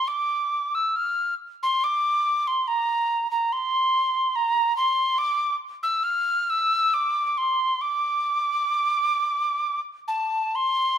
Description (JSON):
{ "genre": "celtic folk", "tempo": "62-72 BPM", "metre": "3/4", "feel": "rubato", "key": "D minor", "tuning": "A4 = 440 Hz", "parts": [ { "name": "breathy mellow tin whistle", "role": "solo", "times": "0.0-11.0 s", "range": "A5 to F6", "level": "-21 LUFS", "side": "equal", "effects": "none" } ], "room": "moderate recital hall reverb, RT60 1.7 s", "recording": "minimal, uncompressed stereo recording", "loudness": "-21 LUFS", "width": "side -9 dB against mid", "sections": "0.0-10.6 A section", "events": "none", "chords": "none", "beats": "| 0.07 0.96 1.82 | 2.67 3.51 4.34 | 5.18 6.04 6.91 | 7.78 8.67 9.60 | 10.55" }